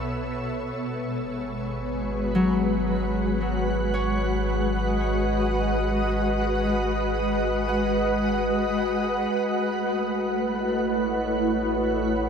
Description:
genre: ambient.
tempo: 56 BPM.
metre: 4/4.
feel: straight.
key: unclear.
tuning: A4 = 440 Hz.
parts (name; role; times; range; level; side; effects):
shimmering ambient pad; sustained chords; 0.0-12.3 s; B2 to F#5; -24 LUFS; equal; chorus, built-in reverb.
warm sub bass; bass; 0.0-12.3 s; G#1 to B1; -31 LUFS; right 1 dB; none.
Celtic harp; arpeggios; 2.3-12.3 s; F#3 to A5; -29 LUFS; left 3 dB; ping-pong delay.
room: wet huge ambient reverb, RT60 7.2 s.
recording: dreamy mix soaked in reverb.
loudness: -22 LUFS.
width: side -6 dB against mid.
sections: 0.0-9.3 A section; 9.3-12.3 B section.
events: none.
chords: 0.0 B9sus4; 0.8 G#m7; 9.3 A69.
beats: | 0.77 1.82 2.87 3.93 | 4.99 6.05 7.13 8.23 | 9.32 10.40 11.46.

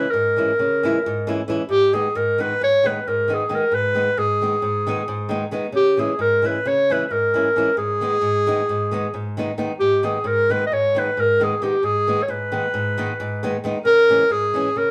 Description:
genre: balkan folk.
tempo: 267 BPM (eighths).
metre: 9/8.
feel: straight.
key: G# harmonic minor.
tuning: A4 = 441 Hz.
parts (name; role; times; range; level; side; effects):
warm clarinet; melody; 0.0-14.9 s; G4 to D#5; -21 LUFS; equal; none.
flamenco guitar; accompaniment; 0.0-14.9 s; G#2 to E4; -27 LUFS; equal; none.
room: moderate studio reverb, RT60 0.6 s.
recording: band playing live in one room.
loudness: -20 LUFS.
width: mono.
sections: 0.0-9.8 A section; 9.8-14.9 A section.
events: none.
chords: 0.0 C#m; 1.7 G#m; 5.7 C#m; 7.8 G#m; 13.8 C#m.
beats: 0.13 0.35 0.58 0.80 1.03 1.25 1.48 | 1.70 1.93 2.15 2.37 2.60 2.82 3.05 3.27 3.50 | 3.72 3.95 4.17 4.40 4.62 4.85 5.07 5.30 5.52 | 5.75 5.97 6.20 6.42 6.65 6.87 7.10 7.32 7.55 | 7.77 8.00 8.22 8.45 8.67 8.90 9.12 9.35 9.57 | 9.80 10.02 10.25 10.47 10.70 10.92 11.15 11.37 11.60 | 11.82 12.05 12.27 12.50 12.72 12.95 13.17 13.40 13.62 | 13.85 14.07 14.30 14.53 14.75.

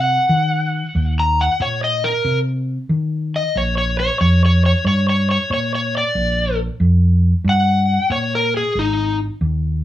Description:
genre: electric blues shuffle.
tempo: 92 BPM.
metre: 4/4.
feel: swing 63% on 8ths.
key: unclear.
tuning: A4 = 440 Hz.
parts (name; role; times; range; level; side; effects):
overdriven slide guitar; melody; 0.0-9.2 s; Eb4 to Bb5; -18 LUFS; left 1 dB; none.
hollow-body short-scale fingered electric bass; bass; 0.0-9.8 s; Ab1 to Eb3; -18 LUFS; equal; none.
room: light reverb.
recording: none.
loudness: -15 LUFS.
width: side -13 dB against mid.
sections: 0.0-9.8 A section.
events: electric slide guitar solo 0.0-9.8.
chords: 0.0 Eb5; 3.5 Bb5; 8.8 Ab5.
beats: 0.30 | 0.95 1.60 2.25 2.90 | 3.55 4.20 4.85 5.50 | 6.15 6.80 7.46 8.11 | 8.76 9.41.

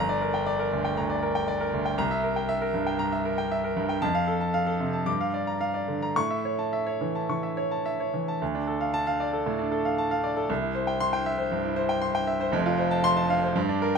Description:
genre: classical, virtuoso piano study.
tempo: 117 BPM.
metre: 4/4.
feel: rubato.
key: D minor.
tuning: A4 = 440 Hz.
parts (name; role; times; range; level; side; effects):
bright grand piano; solo; 0.0-14.0 s; F1 to D6; -24 LUFS; equal; none.
room: little or no reverb.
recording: close, detailed microphones.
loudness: -24 LUFS.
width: side -5 dB against mid.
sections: 0.0-8.4 A section; 8.4-14.0 B section.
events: none.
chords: 0.0 Gm; 2.0 C7; 4.0 F; 5.1 Gm7; 6.2 A; 8.4 Dm; 10.5 C; 12.5 F.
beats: 0.47 0.97 1.49 | 1.99 2.50 3.00 3.52 | 4.03 4.54 5.07 5.61 | 6.16 6.72 7.29 7.86 | 8.41 8.94 9.46 9.98 | 10.50 11.01 11.52 12.02 | 12.54 13.05 13.56.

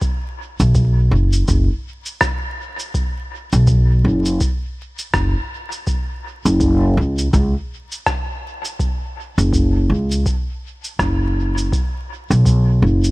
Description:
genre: ambient dub.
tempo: 82 BPM.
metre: 4/4.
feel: swing 59% on 16ths.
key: unclear.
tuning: A4 = 439 Hz.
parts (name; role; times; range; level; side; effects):
electronic cabasa and rim click; drums; 0.0-13.1 s; none; -25 LUFS; equal; studio reverb, dub echo.
electronic kick drum; drums; 0.0-12.6 s; none; -21 LUFS; equal; studio reverb.
upright bass; bass; 0.6-13.1 s; F#1 to C#2; -14 LUFS; equal; none.
room: little or no reverb.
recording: vinyl crackle.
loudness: -15 LUFS.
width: side -21 dB against mid.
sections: 0.0-11.7 A section; 11.7-13.1 B section.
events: none.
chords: none.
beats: | 0.02 0.75 1.48 2.21 | 2.95 3.68 4.41 5.14 | 5.87 6.61 7.34 8.07 | 8.80 9.53 10.26 10.99 | 11.73 12.46.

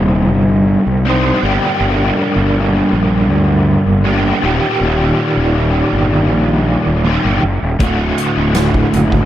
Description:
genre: psychedelic rock.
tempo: 80 BPM.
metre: 4/4.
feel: straight.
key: unclear.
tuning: A4 = 435 Hz.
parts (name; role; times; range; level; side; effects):
overdriven electric guitar; riff; 0.0-9.3 s; D2 to C5; -13 LUFS; equal; rotary speaker, analog delay.
fuzz fingered electric bass; bass; 0.0-9.3 s; D1 to D2; -16 LUFS; equal; overdrive.
soft-mallet drum kit; drums; 7.8-9.3 s; hi-hat, kick drum, snare drum; -18 LUFS; equal; analog delay.
room: small room ambience.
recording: echo-heavy mix.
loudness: -11 LUFS.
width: side -12 dB against mid.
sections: 0.0-9.3 A section.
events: none.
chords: 0.0 Cm; 1.4 Gm; 4.4 Eb; 7.8 D.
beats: 0.31 1.05 | 1.80 2.55 3.30 4.05 | 4.80 5.55 6.30 7.05 | 7.80 8.56.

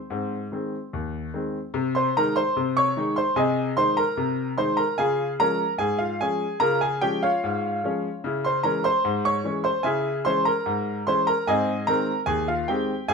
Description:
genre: ragtime piano.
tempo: 74 BPM.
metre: 2/4.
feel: straight.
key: Ab major.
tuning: A4 = 440 Hz.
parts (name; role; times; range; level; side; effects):
bright grand piano; solo; 0.0-13.1 s; Eb2 to Db6; -22 LUFS; equal; none.
room: moderate studio reverb, RT60 0.8 s.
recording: minimal, uncompressed stereo recording.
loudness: -22 LUFS.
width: side -5 dB against mid.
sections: 0.0-1.7 A section; 1.7-13.1 B section.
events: none.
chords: 0.0 Ab; 1.7 Ab/C; 5.0 Db; 8.2 Dbm; 11.5 Ab.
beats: | 0.10 0.92 | 1.74 2.55 | 3.36 4.17 | 4.98 5.79 | 6.60 7.41 | 8.22 9.03 | 9.84 10.65 | 11.46 12.26 | 13.07.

